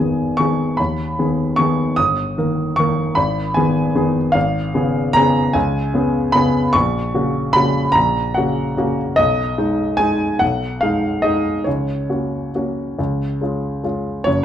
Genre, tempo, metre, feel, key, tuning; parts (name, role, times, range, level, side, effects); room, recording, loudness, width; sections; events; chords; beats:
classical, piano waltz; 131-158 BPM; 3/4; rubato; F# major from 4.4 s; A4 = 442 Hz
warm baby grand piano; solo; 0.0-14.4 s; F#1 to Eb6; -16 LUFS; equal
moderate large studio reverb, RT60 0.9 s; dark, warm production; -16 LUFS; side -10 dB against mid
0.0-14.3 A section
0.0 Abm; 2.0 Eb/G; 3.2 Abm; 4.4 C#7/G#; 6.7 F#/A#; 9.2 G#m/B; 11.7 F#/C#; 13.0 C#
0.39 | 0.78 1.18 1.58 | 1.97 2.36 2.77 | 3.16 3.56 3.96 | 4.35 4.75 5.15 | 5.55 5.95 6.35 | 6.75 7.14 7.55 | 7.96 8.36 8.78 | 9.18 9.58 10.00 | 10.41 10.81 11.23 | 11.66 12.09 12.54 | 12.98 13.41 13.84 | 14.27